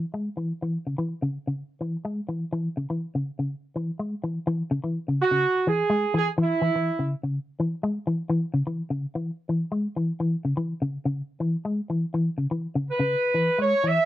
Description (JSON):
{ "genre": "afrobeat", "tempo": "125 BPM", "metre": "4/4", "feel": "swing 54% on 16ths", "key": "C# minor", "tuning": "A4 = 440 Hz", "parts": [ { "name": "electric guitar with an envelope filter", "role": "arpeggios", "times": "0.0-14.0 s", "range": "C#3 to G#3", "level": "-26 LUFS", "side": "left 1 dB", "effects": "tremolo" }, { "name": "mellow horn section", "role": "melody", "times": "5.2-7.1, 12.9-14.1 s", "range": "E4 to E5", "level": "-22 LUFS", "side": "right 2 dB", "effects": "none" } ], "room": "light reverb", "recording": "dry, close 1970s-style studio recording", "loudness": "-24 LUFS", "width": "side -14 dB against mid", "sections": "0.0-4.5 A section; 4.5-14.1 B section", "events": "none", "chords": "0.0 C#m" }